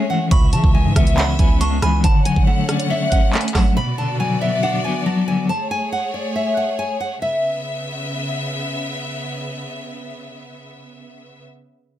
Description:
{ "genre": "hip hop, drill", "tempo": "139 BPM", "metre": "4/4", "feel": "half-time", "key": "C# phrygian", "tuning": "A4 = 440 Hz", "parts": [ { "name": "nylon-string guitar", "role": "melody", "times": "0.0-8.5 s", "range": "D5 to B5", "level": "-23 LUFS", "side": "left 1 dB", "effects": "none" }, { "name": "clean electric guitar", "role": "accompaniment", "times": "0.0-5.5 s", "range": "B2 to D4", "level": "-20 LUFS", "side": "left 3 dB", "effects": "tremolo" }, { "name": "clear symphonic string section", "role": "sustained chords", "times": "0.0-11.4 s", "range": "C#3 to F#5", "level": "-27 LUFS", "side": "equal", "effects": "none" }, { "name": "delicate synth tine bell", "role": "second line", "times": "0.3-2.0 s", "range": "B5 to C#6", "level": "-28 LUFS", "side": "right 4 dB", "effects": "chorus, tape echo" }, { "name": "hard-hitting 808-style bass", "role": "bass", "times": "0.3-2.0 s", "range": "C#2 to C#3", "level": "-18 LUFS", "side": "right 1 dB", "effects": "none" }, { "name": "drill drum kit", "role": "drums", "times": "0.3-3.7 s", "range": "handclaps, hi-hat, kick drum, rim click", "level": "-16 LUFS", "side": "right 1 dB", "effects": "none" } ], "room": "little or no reverb", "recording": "none", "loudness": "-16 LUFS", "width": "side -12 dB against mid", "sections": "0.0-7.2 A section; 7.2-10.7 B section", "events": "none", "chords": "0.3 C#m7; 2.0 Dmaj7; 3.8 Bm; 5.5 Amaj7; 7.2 C#m7", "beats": "| 0.31 0.74 1.18 1.61 | 2.04 2.47 2.90 3.33 | 3.77 4.20 4.63 5.06 | 5.49 5.92 6.36 6.79 | 7.22 7.65 8.08 8.51 | 8.95 9.38 9.81 10.24" }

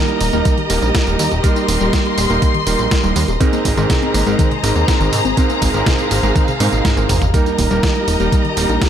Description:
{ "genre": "italo disco", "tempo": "122 BPM", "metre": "4/4", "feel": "straight", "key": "Eb major", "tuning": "A4 = 439 Hz", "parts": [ { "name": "warm studio string section", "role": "sustained chords", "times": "0.0-8.9 s", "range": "G4 to C6", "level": "-20 LUFS", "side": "left 3 dB", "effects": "none" }, { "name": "warbly dusty pluck", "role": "arpeggios", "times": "0.0-8.9 s", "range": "C3 to G4", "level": "-24 LUFS", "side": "left 3 dB", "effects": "chorus, ping-pong delay" }, { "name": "warm electric grand piano", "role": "stabs", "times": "0.0-8.9 s", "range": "Ab2 to Bb4", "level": "-20 LUFS", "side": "right 6 dB", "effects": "ping-pong delay" }, { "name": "clean 12-bit digital drum machine", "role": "drums", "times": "0.1-8.9 s", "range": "hi-hat, snare drum, tambourine, toms", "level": "-22 LUFS", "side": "right 1 dB", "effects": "none" }, { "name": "chorused synth bass", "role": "bass", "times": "0.2-8.8 s", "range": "Eb1 to Ab2", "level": "-19 LUFS", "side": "equal", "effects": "none" }, { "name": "electronic kick drum", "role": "drums", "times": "0.5-8.9 s", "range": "none", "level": "-17 LUFS", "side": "equal", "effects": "none" } ], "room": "light reverb, digital ambience", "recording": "none", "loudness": "-13 LUFS", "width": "side -9 dB against mid", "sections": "0.0-8.9 A section", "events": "drum fill 6.6-7.3", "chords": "0.0 Eb; 3.4 Abadd9; 7.3 Eb", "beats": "0.45 0.95 | 1.44 1.93 2.42 2.91 | 3.40 3.90 4.39 4.88 | 5.37 5.86 6.36 6.85 | 7.34 7.83 8.32 8.81" }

